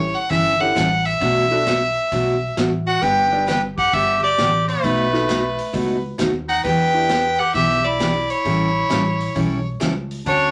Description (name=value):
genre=country, western swing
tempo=132 BPM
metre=4/4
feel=swing 66% on 8ths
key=unclear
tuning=A4 = 440 Hz
part: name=bright fiddle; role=melody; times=0.0-10.5 s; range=B4 to G5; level=-22 LUFS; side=equal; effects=none
part: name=clear upright piano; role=accompaniment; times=0.0-7.1 s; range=G3 to G4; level=-28 LUFS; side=equal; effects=none
part: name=upright bass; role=bass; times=0.0-10.5 s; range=G1 to E2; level=-29 LUFS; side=equal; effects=none
part: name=picked steel-string acoustic guitar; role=accompaniment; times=0.3-10.5 s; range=B2 to A4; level=-25 LUFS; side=equal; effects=none
part: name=vintage drum kit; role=drums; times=0.3-10.4 s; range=hi-hat, kick drum, snare drum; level=-32 LUFS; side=equal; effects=none
part: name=bright clarinet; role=second line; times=2.9-10.5 s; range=A3 to B4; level=-24 LUFS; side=equal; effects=none
room=wet studio ambience, RT60 0.5 s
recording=none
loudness=-19 LUFS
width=mono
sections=0.0-10.5 A section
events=none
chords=0.0 A7; 1.2 Bm7; 3.0 G; 4.8 B7; 6.6 Em7; 8.5 A7